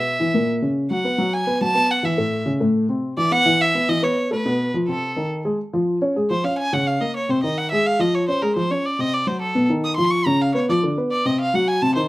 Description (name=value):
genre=jazz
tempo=211 BPM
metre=4/4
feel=straight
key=unclear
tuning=A4 = 440 Hz
part: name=bright violin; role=melody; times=0.0-12.1 s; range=A4 to D#6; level=-22 LUFS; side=right 1 dB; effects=slapback echo
part: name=dark upright piano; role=accompaniment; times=0.0-12.1 s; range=A2 to Db5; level=-20 LUFS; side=left 1 dB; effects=none
room=light reverb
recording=recorded outdoors, with no room sound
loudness=-18 LUFS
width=side -18 dB against mid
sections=0.0-5.6 A section; 5.6-12.1 B section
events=violin solo 5.6-12.1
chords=0.5 F#; 1.0 B5; 2.2 A; 2.7 Amadd11; 3.3 E5; 4.5 Amadd9/B; 5.0 Cm6; 5.6 Db/F; 6.7 Db69; 7.3 Ab; 7.9 Db; 9.0 Cdim7; 9.6 B; 10.1 Db7; 10.7 Bdim; 11.3 Cdim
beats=0.19 0.48 0.76 | 1.04 1.33 1.61 1.90 | 2.18 2.46 2.75 3.03 | 3.32 3.60 3.88 4.17 | 4.45 4.74 5.02 5.30 | 5.59 5.87 6.16 6.44 | 6.72 7.01 7.29 7.57 | 7.86 8.14 8.42 8.71 | 8.99 9.27 9.56 9.84 | 10.12 10.41 10.69 10.97 | 11.26 11.54 11.82